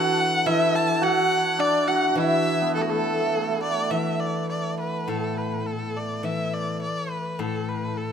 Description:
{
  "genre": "chinese traditional, Chinese chamber ensemble",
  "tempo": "104 BPM",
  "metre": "4/4",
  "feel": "straight",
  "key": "A zhi mode",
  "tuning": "A4 = 441 Hz",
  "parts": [
    { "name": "rich erhu", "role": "melody", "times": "0.0-8.1 s", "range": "F#4 to A5", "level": "-26 LUFS", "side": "left 1 dB", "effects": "none" },
    { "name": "hammered dulcimer", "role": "second line", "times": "0.0-7.9 s", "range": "A3 to A4", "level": "-26 LUFS", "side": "right 7 dB", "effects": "none" },
    { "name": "mellow hollow large dizi", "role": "second line", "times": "0.0-3.6 s", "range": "A4 to A5", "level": "-27 LUFS", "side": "left 8 dB", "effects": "none" },
    { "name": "steel-string zither", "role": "accompaniment", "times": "0.0-8.1 s", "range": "A2 to E3", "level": "-29 LUFS", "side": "left 4 dB", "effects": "none" }
  ],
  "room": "light reverb",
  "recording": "close, detailed microphones",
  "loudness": "-22 LUFS",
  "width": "side -7 dB against mid",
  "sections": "0.0-3.9 A section; 3.9-8.1 B section",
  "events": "none",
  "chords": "none",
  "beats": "0.47 1.03 | 1.60 2.18 2.76 3.35 | 3.93 4.51 5.10 5.68 | 6.26 6.83 7.40 7.97"
}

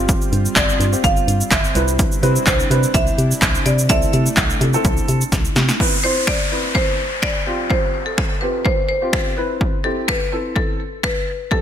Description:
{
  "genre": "dance-pop",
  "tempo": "126 BPM",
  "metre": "4/4",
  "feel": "straight",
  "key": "C major",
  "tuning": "A4 = 440 Hz",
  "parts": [
    { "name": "marimba with hard mallets", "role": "melody", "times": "0.0-11.6 s", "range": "A4 to F5", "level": "-22 LUFS", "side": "left 1 dB", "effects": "ping-pong delay" },
    { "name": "warm baby grand piano", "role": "accompaniment", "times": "0.0-11.6 s", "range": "C4 to C5", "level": "-24 LUFS", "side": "right 1 dB", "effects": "wide subtle chorus, sidechain pumping" },
    { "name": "chorused pulse-width pad", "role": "sustained chords", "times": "0.0-5.8 s", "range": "C3 to F4", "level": "-27 LUFS", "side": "right 2 dB", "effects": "sidechain pumping" },
    { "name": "organ-like FM bass", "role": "bass", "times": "0.0-5.7 s", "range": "G1 to C3", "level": "-19 LUFS", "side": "equal", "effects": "sidechain pumping" },
    { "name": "punchy analog drum machine", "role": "drums", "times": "0.1-11.6 s", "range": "finger snaps, handclaps, hi-hat, kick drum, shaker, snare drum", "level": "-18 LUFS", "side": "equal", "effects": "overdrive, gated reverb" },
    { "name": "downlifter", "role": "sound effects", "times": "5.8-9.6 s", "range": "none", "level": "-24 LUFS", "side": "equal", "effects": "none" }
  ],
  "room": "light reverb, digital ambience",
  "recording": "bright 1980s-style digital production",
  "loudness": "-15 LUFS",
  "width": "side -9 dB against mid",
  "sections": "0.0-5.8 A section; 5.8-11.6 B section",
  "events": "drum fill 5.3-5.8",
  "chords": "0.0 G7sus4; 1.8 Cmaj7; 3.9 C6; 5.8 Cmaj7; 7.5 G7sus4; 9.4 Cmaj7",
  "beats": "| 0.09 0.56 1.04 1.51 | 1.99 2.47 2.94 3.42 | 3.90 4.37 4.85 5.33 | 5.80 6.28 6.75 7.23 | 7.71 8.18 8.66 9.13 | 9.61 10.09 10.56 11.04 | 11.52"
}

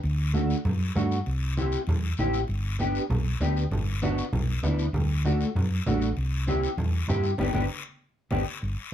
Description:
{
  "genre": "latin, cumbia",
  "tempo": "196 BPM",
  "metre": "4/4",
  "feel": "straight",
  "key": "G major",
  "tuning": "A4 = 440 Hz",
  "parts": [
    { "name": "hollow-body short-scale fingered electric bass", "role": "bass", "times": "0.0-8.7 s", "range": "G1 to G2", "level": "-26 LUFS", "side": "equal", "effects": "none" },
    { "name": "congas", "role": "percussion", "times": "0.0-8.8 s", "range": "none", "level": "-32 LUFS", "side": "right 2 dB", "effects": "none" },
    { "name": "guiro", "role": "percussion", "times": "0.0-8.9 s", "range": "none", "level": "-40 LUFS", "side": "left 6 dB", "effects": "none" },
    { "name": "mellow electric guitar", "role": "accompaniment", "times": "0.3-8.4 s", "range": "A3 to G4", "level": "-28 LUFS", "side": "equal", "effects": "ensemble chorus" }
  ],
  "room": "light reverb",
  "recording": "dark, warm production",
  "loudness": "-24 LUFS",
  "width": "side -10 dB against mid",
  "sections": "0.0-8.6 A section",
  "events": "band accent 7.4-8.6; drum fill 8.0-8.6",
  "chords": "0.0 D; 1.3 C; 2.5 G; 4.9 D; 6.2 C; 7.4 G",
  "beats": "| 0.04 0.34 0.65 0.96 | 1.26 1.57 1.88 2.19 | 2.49 2.80 3.10 3.41 | 3.72 4.02 4.33 4.64 | 4.94 5.25 5.56 5.86 | 6.17 6.48 6.78 7.09 | 7.39 7.70 8.01 8.31 | 8.62"
}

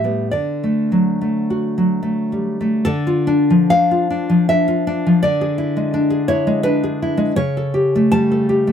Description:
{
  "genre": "romantic piece for solo classical guitar",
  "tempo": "67-85 BPM",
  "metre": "3/4",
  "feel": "rubato",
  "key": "unclear",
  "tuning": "A4 = 439 Hz",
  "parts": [
    { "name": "nylon-string guitar", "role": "solo", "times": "0.0-8.7 s", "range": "A2 to A5", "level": "-15 LUFS", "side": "left 1 dB", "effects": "none" }
  ],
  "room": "light reverb",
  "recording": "none",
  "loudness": "-15 LUFS",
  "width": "side -8 dB against mid",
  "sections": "0.0-2.9 A section; 2.9-8.7 B section",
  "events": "none",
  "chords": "0.3 D; 2.9 Dm; 5.2 E7/D; 7.3 A7/C#",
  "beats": "| 0.33 1.20 2.04 | 2.86 3.70 4.46 | 5.19 5.90 6.61 | 7.33 8.11"
}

